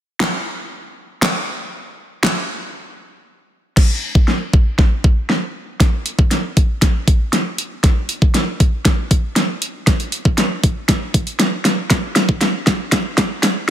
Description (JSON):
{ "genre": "pop", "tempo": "118 BPM", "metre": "4/4", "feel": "straight", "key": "none", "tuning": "none", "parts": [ { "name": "pop drum kit", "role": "drums", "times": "0.2-13.5 s", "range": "crash cymbal, handclaps, hi-hat, kick drum, snare drum", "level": "-15 LUFS", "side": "equal", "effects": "overdrive, soft clipping on snare" } ], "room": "little or no reverb", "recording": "dense, heavily limited modern master, high-pass filter", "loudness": "-15 LUFS", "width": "side -11 dB against mid", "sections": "0.0-3.8 A section; 3.8-13.7 B section", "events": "drums muted 3.3-3.8; build-up 3.8-13.7; drum fill 3.8-13.7; filter sweep 3.8-13.7", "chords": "none", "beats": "0.21 0.72 1.23 | 1.74 2.24 2.75 3.26 | 3.77 4.28 4.79 5.29 | 5.80 6.31 6.82 7.33 | 7.84 8.35 8.85 9.36 | 9.87 10.38 10.89 11.40 | 11.90 12.41 12.92 13.43" }